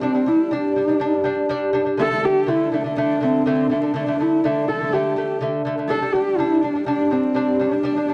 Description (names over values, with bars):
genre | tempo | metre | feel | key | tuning
mongolian traditional, Mongolian folk | 123 BPM | 4/4 | straight | G zhi mode | A4 = 440 Hz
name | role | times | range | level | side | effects
dark horsehead fiddle | melody | 0.0-8.1 s | C4 to A4 | -22 LUFS | equal | none
lute | arpeggios | 0.0-8.1 s | D3 to D4 | -24 LUFS | equal | none
room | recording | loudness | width
moderate plate reverb, RT60 2.2 s | dark, warm production, vinyl crackle | -20 LUFS | mono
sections
0.0-8.1 A section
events
none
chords
0.0 G5; 2.0 D5; 5.9 G5